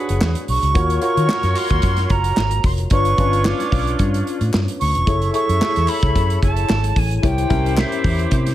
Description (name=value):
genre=polished 1980s jazz-funk pop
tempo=111 BPM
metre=4/4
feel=swing 54% on 16ths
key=unclear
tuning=A4 = 440 Hz
part: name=mellow horn section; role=second line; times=0.0-8.5 s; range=D4 to Fb5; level=-28 LUFS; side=right 3 dB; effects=none
part: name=tine electric piano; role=accompaniment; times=0.0-8.5 s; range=C#4 to C#5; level=-24 LUFS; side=left 3 dB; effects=medium stereo tremolo, lush chorus
part: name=vintage muted fingered electric bass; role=bass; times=0.1-8.5 s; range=Fb1 to Eb3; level=-20 LUFS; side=equal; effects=none
part: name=modern studio drum kit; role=drums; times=0.1-8.5 s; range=hi-hat, kick drum, snare drum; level=-21 LUFS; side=equal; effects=none
part: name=group handclap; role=percussion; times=0.2-7.9 s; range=none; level=-33 LUFS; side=left 2 dB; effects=none
part: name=breathy silver concert flute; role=melody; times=0.5-8.3 s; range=E5 to D6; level=-22 LUFS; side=right 3 dB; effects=none
room=small room ambience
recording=none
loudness=-16 LUFS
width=side -13 dB against mid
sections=0.0-8.5 A section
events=none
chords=0.0 E13; 0.8 Ebm7; 2.9 G7#11; 5.1 Gbm9; 7.2 C7b9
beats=0.22 | 0.76 1.30 1.84 2.38 | 2.92 3.46 4.00 4.54 | 5.07 5.61 6.15 6.69 | 7.23 7.77 8.31